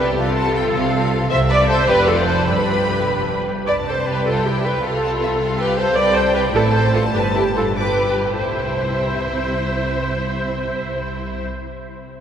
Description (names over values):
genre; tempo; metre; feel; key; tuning
quick classical-period movement for string orchestra; 93-107 BPM (dotted quarters); 6/8; rubato; C major; A4 = 441 Hz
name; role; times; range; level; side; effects
rich studio violin section; melody; 0.0-11.4 s; D5 to D6; -29 LUFS; left 3 dB; none
rich studio violin section; second line; 0.0-11.4 s; E4 to C5; -26 LUFS; left 2 dB; none
rich studio viola section; accompaniment; 0.0-11.4 s; G4 to E5; -19 LUFS; equal; none
clear studio cello section; bass; 0.0-11.4 s; F2 to C3; -25 LUFS; right 1 dB; none
rich studio double bass section; bass; 0.0-11.4 s; F1 to C2; -24 LUFS; right 2 dB; none
room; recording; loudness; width
wet cathedral reverb, RT60 6.1 s; none; -16 LUFS; side -8 dB against mid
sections
0.0-8.4 A section; 8.4-10.8 B section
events
slowing down 5.4-8.4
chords
0.0 C; 1.9 Dm/F; 2.5 G; 3.7 C5; 6.5 Am; 7.1 G; 8.4 C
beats
| 0.17 0.74 | 1.31 1.89 | 2.48 3.07 | 3.67 4.26 | 4.84 5.40 | 5.97 6.54 | 7.14 7.75 | 8.38 9.00 | 9.62 10.23